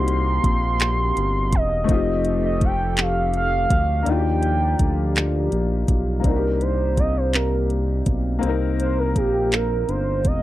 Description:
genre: slow six-eight R&B.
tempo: 55 BPM (dotted quarters).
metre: 6/8.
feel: straight.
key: C dorian.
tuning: A4 = 440 Hz.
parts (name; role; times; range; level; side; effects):
gliding portamento lead; melody; 0.0-10.4 s; G4 to C6; -24 LUFS; right 2 dB; chorus, slapback echo.
warm baby grand piano; accompaniment; 0.0-10.4 s; A3 to Bb4; -26 LUFS; left 6 dB; none.
hollow soft pad; sustained chords; 0.0-10.4 s; F3 to D5; -31 LUFS; right 2 dB; chorus.
smooth synth bass; bass; 0.0-10.4 s; E1 to Eb2; -23 LUFS; equal; none.
smooth R&B drum kit; drums; 0.1-10.4 s; handclaps, hi-hat, kick drum; -21 LUFS; equal; none.
room: little or no reverb.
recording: dry, close 1970s-style studio recording.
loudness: -18 LUFS.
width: side -15 dB against mid.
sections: 0.0-6.2 A section; 6.2-10.4 B section.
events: soft synth lead solo 6.2-10.4.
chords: 0.0 Cm7; 1.9 F9; 4.1 Ebmaj9; 6.2 Cm7.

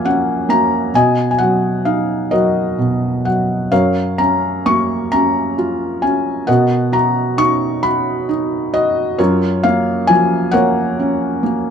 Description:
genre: classical, lyrical solo piano.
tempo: 44 BPM (dotted quarters).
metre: 6/8.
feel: rubato.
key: F# major.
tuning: A4 = 440 Hz.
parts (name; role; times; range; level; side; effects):
felt-muted upright piano; solo; 0.0-11.7 s; F#2 to C#6; -14 LUFS; equal; none.
room: moderate studio reverb, RT60 0.5 s.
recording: dark, warm production.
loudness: -14 LUFS.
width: side -7 dB against mid.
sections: 0.0-11.7 A section.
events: none.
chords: 0.0 F#maj7; 0.9 Bmaj7; 3.7 F#maj7; 6.5 Bmaj7; 9.2 F#maj7.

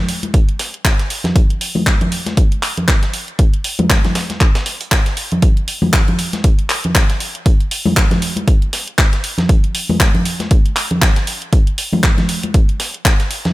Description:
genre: house.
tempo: 118 BPM.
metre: 4/4.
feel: swing 57% on 16ths.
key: none.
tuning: none.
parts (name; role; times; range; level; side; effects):
breakbeat sampler-style drum kit; drums; 0.1-13.5 s; hi-hat, snare drum; -28 LUFS; right 1 dB; sidechain pumping on hats, high-pass filter on hats, high-pass filter on snare.
house drum kit; drums; 0.1-13.5 s; handclaps, hi-hat; -19 LUFS; equal; none.
congas; percussion; 0.2-13.5 s; none; -19 LUFS; equal; none.
electronic kick drum; drums; 0.3-13.2 s; none; -13 LUFS; equal; none.
room: little or no reverb.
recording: none.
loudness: -13 LUFS.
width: side -18 dB against mid.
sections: 0.0-13.5 A section.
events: none.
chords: none.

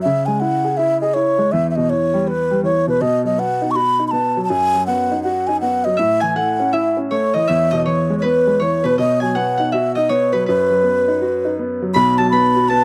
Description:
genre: celtic folk, Celtic hornpipe.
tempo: 161 BPM.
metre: 4/4.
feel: swing 63% on 8ths.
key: B mixolydian.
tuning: A4 = 440 Hz.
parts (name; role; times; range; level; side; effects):
mellow baroque flute; melody; 0.0-12.8 s; B4 to C#6; -19 LUFS; equal; none.
clear upright piano; accompaniment; 0.0-12.8 s; B1 to G#4; -22 LUFS; equal; none.
concert harp; second line; 6.0-12.8 s; B4 to B5; -27 LUFS; equal; none.
room: light reverb.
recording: dry, close 1970s-style studio recording.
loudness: -17 LUFS.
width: mono.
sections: 0.0-11.9 A section.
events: none.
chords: 0.0 C#m; 1.5 Em; 3.0 B; 6.0 A; 7.5 E; 9.0 B; 11.9 B5.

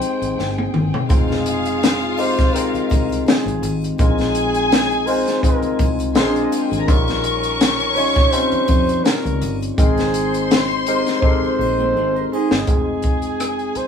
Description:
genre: lush 1970s-style soul.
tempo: 83 BPM.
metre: 4/4.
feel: swing 54% on 16ths.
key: F minor.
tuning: A4 = 441 Hz.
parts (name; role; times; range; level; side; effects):
mellow flugelhorn; melody; 0.0-13.9 s; Ab4 to Db5; -23 LUFS; right 3 dB; none.
warm studio string section; second line; 0.0-13.9 s; Db4 to Db6; -24 LUFS; left 3 dB; tape echo.
barky tine electric piano; accompaniment; 0.0-13.9 s; G3 to G5; -22 LUFS; left 3 dB; none.
compact cocktail drum kit; drums; 0.0-13.9 s; hi-hat, kick drum, rim click, snare drum, toms; -18 LUFS; equal; none.
fingered electric bass; bass; 0.2-13.8 s; F1 to F2; -26 LUFS; equal; none.
triangle; percussion; 1.1-12.7 s; none; -44 LUFS; right 1 dB; none.
electric guitar through a small old amp; riff; 11.8-12.9 s; Bb3 to Eb5; -24 LUFS; right 8 dB; none.
room: moderate studio reverb, RT60 0.5 s.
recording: band playing live in one room.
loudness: -15 LUFS.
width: side -7 dB against mid.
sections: 0.0-1.1 A section; 1.1-12.7 B section; 12.7-13.9 C section.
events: drum fill 0.4-1.1, 11.2-12.7.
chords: 0.0 Abmaj7; 1.1 Fm9; 4.0 Bb9sus4; 6.2 Bb9; 6.9 Eb9/Bb; 9.8 Abmaj7; 12.7 Fm9.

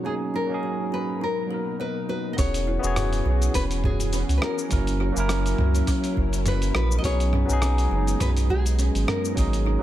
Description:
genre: sunset chillout.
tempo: 103 BPM.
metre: 4/4.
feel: swing 56% on 16ths.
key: E lydian.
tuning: A4 = 441 Hz.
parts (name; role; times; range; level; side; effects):
nylon-string guitar; melody; 0.0-9.8 s; G#4 to D#5; -31 LUFS; left 2 dB; analog delay.
barky tine electric piano; accompaniment; 0.0-9.8 s; F#3 to C#5; -29 LUFS; moving between left 4 dB and right 5 dB; auto-pan, analog delay.
soft string machine; sustained chords; 0.0-9.8 s; G#2 to A#4; -32 LUFS; equal; ensemble chorus.
kalimba; arpeggios; 0.0-9.8 s; C#4 to D#5; -34 LUFS; equal; analog delay.
warm sub bass; bass; 2.4-9.8 s; E1 to C#2; -23 LUFS; equal; none.
dusty soul sampler-style drum kit; drums; 2.4-9.6 s; hi-hat, rim click, shaker, toms; -30 LUFS; equal; analog delay.
electronic kick drum; drums; 2.4-9.5 s; none; -26 LUFS; equal; overdrive.
room: light reverb, digital ambience.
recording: echo-heavy mix.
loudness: -21 LUFS.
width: side -13 dB against mid.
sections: 0.0-2.4 A section; 2.4-9.8 B section.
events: none.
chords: 0.0 G#9sus4; 1.2 Bmaj7; 2.4 E69; 4.7 F#7; 7.0 B69.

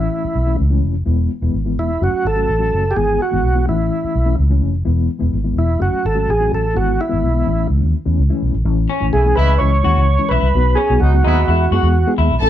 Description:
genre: soul.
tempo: 126 BPM.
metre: 4/4.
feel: straight.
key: E major.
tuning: A4 = 440 Hz.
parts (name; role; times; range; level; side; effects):
tonewheel organ; melody; 0.0-12.1 s; E4 to C#5; -18 LUFS; right 2 dB; chorus vibrato.
reed electric piano; accompaniment; 0.0-12.5 s; E3 to A4; -22 LUFS; left 4 dB; fast tremolo.
vintage muted fingered electric bass; bass; 0.0-12.5 s; E1 to F#2; -16 LUFS; equal; none.
electric guitar through a small old amp; riff; 8.9-12.3 s; C#4 to F#4; -23 LUFS; left 4 dB; harmonic tremolo.
warm horn section; second line; 9.1-11.6 s; F#3 to E4; -24 LUFS; right 2 dB; none.
rich studio violin section; second line; 12.4-12.5 s; A4 to A5; -14 LUFS; equal; none.
room: light reverb.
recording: band playing live in one room.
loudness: -14 LUFS.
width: side -11 dB against mid.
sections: 0.0-8.7 A section; 8.7-12.5 B section.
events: none.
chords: 0.0 A; 1.1 E; 2.0 F#m; 3.0 E/G#; 3.7 A; 4.9 E; 5.8 F#m; 6.8 E/G#; 7.5 A; 9.6 C#m; 10.5 B; 11.5 E.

